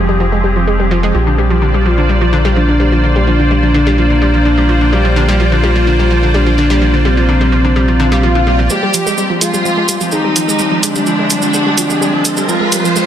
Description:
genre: melodic techno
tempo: 127 BPM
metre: 4/4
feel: straight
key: F dorian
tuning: A4 = 438 Hz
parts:
  - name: evolving wavetable pad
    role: sustained chords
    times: 0.0-13.1 s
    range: F3 to D5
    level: -17 LUFS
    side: right 1 dB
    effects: ensemble chorus, built-in reverb
  - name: round analog bass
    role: bass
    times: 0.0-8.7 s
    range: F1 to Bb1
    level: -13 LUFS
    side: equal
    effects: none
  - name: analog pluck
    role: arpeggios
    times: 0.1-13.0 s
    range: D3 to Ab3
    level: -17 LUFS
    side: equal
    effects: chorus, ping-pong delay
  - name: soft octave-layered synth lead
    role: melody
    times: 1.1-13.1 s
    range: C4 to G4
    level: -17 LUFS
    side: left 1 dB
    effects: chorus, ping-pong delay
  - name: swell and riser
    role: sound effects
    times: 7.9-13.1 s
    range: none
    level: -21 LUFS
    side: equal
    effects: none
  - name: rich studio violin section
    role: second line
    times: 8.7-13.1 s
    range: D4 to G4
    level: -18 LUFS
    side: right 1 dB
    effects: vintage 12-bit sampler grit, ping-pong delay
  - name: maracas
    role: percussion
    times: 8.7-13.1 s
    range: none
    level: -19 LUFS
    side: right 3 dB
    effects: none
  - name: electronic hi-hat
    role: drums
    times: 8.9-12.8 s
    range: none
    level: -16 LUFS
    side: right 1 dB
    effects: high-pass filter on hats, high-pass filter on room
room: moderate digital room reverb, RT60 1.1 s, digital ambience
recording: dense, heavily limited modern master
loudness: -10 LUFS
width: side -10 dB against mid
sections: 0.0-8.7 A section; 8.7-13.1 B section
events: filter sweep on synth pluck 0.0-8.7; swell 7.9-8.7; build-up 8.7-13.1; riser 8.7-13.1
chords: 0.0 Fmadd9; 1.1 Bb6; 8.7 Fmadd9

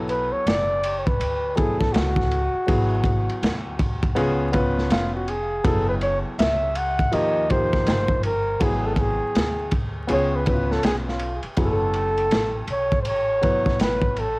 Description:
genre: hip hop, jazz-hop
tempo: 81 BPM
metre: 4/4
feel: swing 63% on 16ths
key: F# minor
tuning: A4 = 440 Hz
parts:
  - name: warm grand piano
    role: accompaniment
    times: 0.0-14.2 s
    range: E#3 to B4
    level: -27 LUFS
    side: left 1 dB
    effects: cassette tape
  - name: upright bass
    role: bass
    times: 0.0-14.4 s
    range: E#1 to D#2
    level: -28 LUFS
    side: equal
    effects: none
  - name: mellow flugelhorn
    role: melody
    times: 0.1-14.4 s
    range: E#4 to F#5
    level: -24 LUFS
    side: equal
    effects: cassette tape, analog delay
  - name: crunchy breakbeat drum kit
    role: drums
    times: 0.1-14.4 s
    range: hi-hat, kick drum, ride cymbal, snare drum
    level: -24 LUFS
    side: equal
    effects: none
room: light reverb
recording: home recording on cassette, vinyl crackle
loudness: -20 LUFS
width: side -27 dB against mid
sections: 0.0-11.6 A section; 11.6-14.4 B section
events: flugelhorn solo 0.0-11.6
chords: 0.0 Bm7; 2.7 G#m7b5; 4.2 C#7; 5.6 F#5; 7.1 D#; 8.6 G#m7b5; 10.1 C#7; 11.6 F#m7

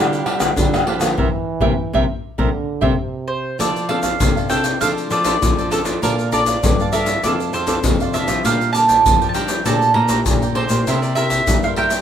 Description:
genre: samba and choro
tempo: 99 BPM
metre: 4/4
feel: straight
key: F major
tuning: A4 = 439 Hz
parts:
  - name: breathy trombone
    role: second line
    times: 0.0-3.6 s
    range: C3 to G3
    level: -25 LUFS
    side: right 5 dB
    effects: none
  - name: cavaquinho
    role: accompaniment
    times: 0.0-12.0 s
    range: D4 to Bb5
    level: -24 LUFS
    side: right 6 dB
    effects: none
  - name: nylon-string guitar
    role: accompaniment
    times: 0.0-12.0 s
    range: G2 to A4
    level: -25 LUFS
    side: left 4 dB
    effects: none
  - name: nylon-string guitar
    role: bass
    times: 0.0-12.0 s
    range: F2 to G3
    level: -23 LUFS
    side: right 1 dB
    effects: none
  - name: tube shaker, pandeiro, tamborim and surdo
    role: percussion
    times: 0.1-12.0 s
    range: none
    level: -20 LUFS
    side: left 2 dB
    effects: none
  - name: mandolin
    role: melody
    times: 3.3-12.0 s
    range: A4 to Bb5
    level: -19 LUFS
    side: right 2 dB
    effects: plate reverb
room: light reverb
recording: none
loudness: -15 LUFS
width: side -9 dB against mid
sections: 0.0-3.6 A section; 3.6-12.0 B section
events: band accent 1.2-3.6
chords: 0.0 G7/D; 1.2 C7; 3.6 F6; 4.8 Dm7/F; 6.0 Bbmaj7; 7.2 F6; 8.5 Bb6; 9.7 Gmadd9/Bb; 10.9 C7

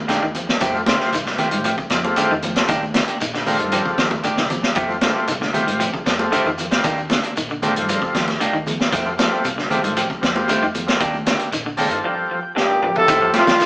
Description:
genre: afrobeat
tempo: 115 BPM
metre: 4/4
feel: straight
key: F mixolydian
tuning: A4 = 440 Hz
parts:
  - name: hollow-body short-scale fingered electric bass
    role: bass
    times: 0.0-13.6 s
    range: Bb1 to F3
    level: -32 LUFS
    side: equal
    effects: none
  - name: electric guitar at the edge of break-up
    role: arpeggios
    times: 0.1-13.7 s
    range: C3 to G3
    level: -28 LUFS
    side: left 1 dB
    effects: tremolo
  - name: semi-hollow electric guitar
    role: stabs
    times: 0.1-13.7 s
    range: Eb3 to G4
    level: -24 LUFS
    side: right 1 dB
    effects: none
  - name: vintage drum kit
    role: drums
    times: 0.1-13.7 s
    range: hi-hat, kick drum, snare drum, toms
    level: -21 LUFS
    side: equal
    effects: none
  - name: congas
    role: percussion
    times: 0.1-13.5 s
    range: none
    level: -27 LUFS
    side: equal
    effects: none
  - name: shekere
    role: percussion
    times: 0.1-13.7 s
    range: none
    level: -33 LUFS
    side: equal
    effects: none
  - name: overdriven combo organ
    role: accompaniment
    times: 0.7-13.5 s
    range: G3 to A5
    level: -23 LUFS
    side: left 1 dB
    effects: none
  - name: warm trumpet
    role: melody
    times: 12.6-13.7 s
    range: F4 to A4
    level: -15 LUFS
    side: equal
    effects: none
  - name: bright trombone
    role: second line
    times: 12.6-13.7 s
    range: A2 to C3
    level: -29 LUFS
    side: equal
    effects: none
  - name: brilliant bass trombone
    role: second line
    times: 12.6-13.7 s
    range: F2 to A2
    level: -28 LUFS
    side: equal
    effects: none
room: wet stone room reverb, RT60 1.1 s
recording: band playing live in one room, small speaker sound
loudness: -17 LUFS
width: side -24 dB against mid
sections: 0.0-13.1 A section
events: transistor combo organ fill 4.0-4.8, 11.5-13.1; drum fill 12.6-13.1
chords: 0.0 Ebmaj7; 0.6 F9; 2.7 Ebmaj7; 4.8 F9; 6.8 Ebmaj7; 8.9 F9; 11.0 Ebmaj7; 13.1 F9

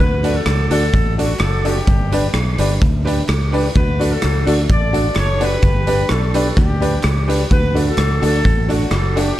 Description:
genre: ska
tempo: 128 BPM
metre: 4/4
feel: straight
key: D major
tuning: A4 = 441 Hz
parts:
  - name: warm horn section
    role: melody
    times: 0.0-9.4 s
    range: D4 to D5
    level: -22 LUFS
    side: left 1 dB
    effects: slapback echo, plate reverb
  - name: fingered electric bass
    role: bass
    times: 0.0-9.3 s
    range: F#1 to D2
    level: -18 LUFS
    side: equal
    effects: none
  - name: archtop guitar, miked and amplified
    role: accompaniment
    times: 0.2-9.3 s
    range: D4 to B4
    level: -23 LUFS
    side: right 4 dB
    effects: slapback echo
  - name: warm upright piano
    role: stabs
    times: 0.2-9.3 s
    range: D4 to D5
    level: -24 LUFS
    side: left 5 dB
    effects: plate reverb
  - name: raw garage drum kit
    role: drums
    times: 0.2-9.3 s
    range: hi-hat, kick drum, rim click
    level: -18 LUFS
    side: equal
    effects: none
  - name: group handclap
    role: percussion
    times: 0.5-9.0 s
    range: none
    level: -32 LUFS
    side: right 3 dB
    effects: none
room: light reverb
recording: dark, warm production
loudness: -14 LUFS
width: side -14 dB against mid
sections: 0.0-9.4 A section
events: none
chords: 0.0 D; 1.9 G; 3.8 D; 5.6 G; 7.5 D

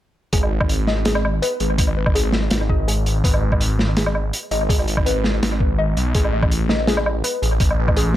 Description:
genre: half-time drum and bass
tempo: 165 BPM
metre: 4/4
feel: swing 53% on 16ths, half-time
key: G# phrygian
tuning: A4 = 445 Hz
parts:
  - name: warbly dusty pluck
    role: arpeggios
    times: 0.3-8.1 s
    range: G#4 to D#5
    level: -26 LUFS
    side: left 2 dB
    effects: chorus, analog delay
  - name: phased detuned saw bass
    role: bass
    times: 0.3-8.2 s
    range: G#1 to B1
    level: -20 LUFS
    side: equal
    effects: phaser, tube saturation
  - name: crunchy breakbeat drum kit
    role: drums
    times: 0.3-8.2 s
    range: hi-hat, snare drum, woodblock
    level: -23 LUFS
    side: equal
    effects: analog delay
  - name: electronic kick drum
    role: drums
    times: 0.3-7.9 s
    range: none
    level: -20 LUFS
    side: equal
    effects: none
room: studio reverb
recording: echo-heavy mix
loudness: -17 LUFS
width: side -13 dB against mid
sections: 0.3-8.2 A section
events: none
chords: 0.3 G#m; 6.1 Asus2

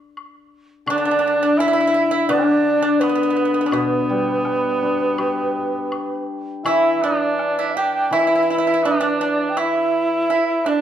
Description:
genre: chinese traditional, Chinese chamber ensemble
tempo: 83 BPM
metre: 4/4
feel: rubato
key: unclear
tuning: A4 = 440 Hz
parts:
  - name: woodblock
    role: percussion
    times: 0.2-10.5 s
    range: none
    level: -30 LUFS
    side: left 3 dB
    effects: none
  - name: breathy mellow low xiao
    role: melody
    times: 0.9-10.8 s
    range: B4 to G5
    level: -21 LUFS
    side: right 2 dB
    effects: none
  - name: mellow cor anglais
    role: second line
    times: 0.9-10.8 s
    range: B3 to E4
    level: -23 LUFS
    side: right 1 dB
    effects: none
  - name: pipa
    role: second line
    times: 0.9-10.8 s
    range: B3 to G4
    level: -23 LUFS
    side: right 4 dB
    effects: none
  - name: hammered dulcimer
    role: accompaniment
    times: 0.9-10.3 s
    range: B2 to G4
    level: -22 LUFS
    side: left 3 dB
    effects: none
room: moderate recital hall reverb, RT60 1.4 s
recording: dark, warm production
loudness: -16 LUFS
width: side -10 dB against mid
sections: 0.0-10.8 A section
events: none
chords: none

